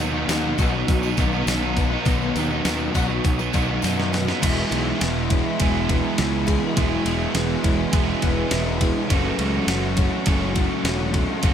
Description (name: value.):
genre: rock, shoegaze and dream pop.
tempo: 102 BPM.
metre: 4/4.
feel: straight.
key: E major.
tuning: A4 = 439 Hz.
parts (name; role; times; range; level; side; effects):
picked twelve-string acoustic guitar; arpeggios; 0.0-11.5 s; D#3 to G#4; -32 LUFS; left 5 dB; ensemble chorus, slapback echo.
overdriven electric guitar; riff; 0.0-11.5 s; B2 to A4; -25 LUFS; right 8 dB; reverse reverb.
overdriven semi-hollow guitar; riff; 0.0-11.5 s; E2 to F#4; -26 LUFS; left 7 dB; analog chorus.
fuzz picked electric bass; bass; 0.0-11.5 s; E1 to F#2; -26 LUFS; left 1 dB; overdrive.
tambourine; percussion; 0.0-4.3 s; none; -40 LUFS; left 9 dB; none.
clean 12-bit digital drum machine; drums; 0.3-11.5 s; crash cymbal, hi-hat, kick drum, ride cymbal, snare drum; -24 LUFS; equal; none.
room: light reverb.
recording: none.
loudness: -19 LUFS.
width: side -9 dB against mid.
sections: 0.0-4.4 A section; 4.4-11.5 B section.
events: drum fill 3.8-4.4.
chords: 0.0 Badd9; 4.4 E69; 9.1 F#m9.